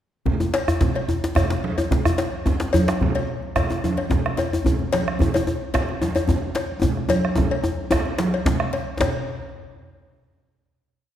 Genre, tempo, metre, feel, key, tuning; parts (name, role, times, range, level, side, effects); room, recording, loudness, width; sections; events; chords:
west african traditional, West African drum ensemble; 110 BPM; 4/4; straight
bombo; percussion; 0.3-9.3 s; -25 LUFS; right 2 dB
congas; percussion; 0.3-9.3 s; -27 LUFS; right 3 dB
djembe; percussion; 0.3-9.3 s; -29 LUFS; left 3 dB
djembe; percussion; 0.4-9.3 s; -24 LUFS; left 1 dB
cowbell; percussion; 0.5-9.3 s; -28 LUFS; left 4 dB
wet scoring stage reverb, RT60 1.7 s; heard from further back in the room; -20 LUFS; side -10 dB against mid
0.3-9.0 A section; 9.0-11.2 final hit
drum fill 6.8-9.0